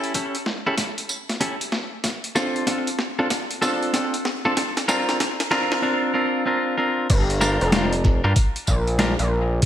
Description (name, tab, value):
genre	glitch hop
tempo	95 BPM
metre	4/4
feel	swing 64% on 16ths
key	G minor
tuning	A4 = 441 Hz
part	clean electric guitar	stabs	0.0-9.1 s	C4 to Bb4	-23 LUFS	equal	vintage 12-bit sampler grit, sidechain pumping, ping-pong delay
part	boom bap sampler-style drum kit	drums	0.0-9.7 s	crash cymbal, hi-hat, snare drum, tambourine	-25 LUFS	equal	overdrive, high-pass filter on hats, high-pass filter on snare, high-pass filter on perc, high-pass filter on cymbals, gated reverb
part	electronic kick drum	drums	0.2-9.7 s	none	-21 LUFS	equal	high-pass filter on kick, high-pass filter on room
part	gritty driven synth bass	bass	7.1-9.6 s	F1 to G2	-21 LUFS	equal	distortion, tube saturation
room	moderate lush hall reverb, RT60 1.6 s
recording	bright 1980s-style digital production, vinyl crackle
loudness	-20 LUFS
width	side -11 dB against mid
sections	0.0-7.1 A section; 7.1-9.7 B section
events	build-up 0.0-7.1; drum fill 0.0-5.8; drop 7.1-9.7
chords	0.0 A7; 2.0 Dm7; 4.6 Csus2; 7.1 Gm7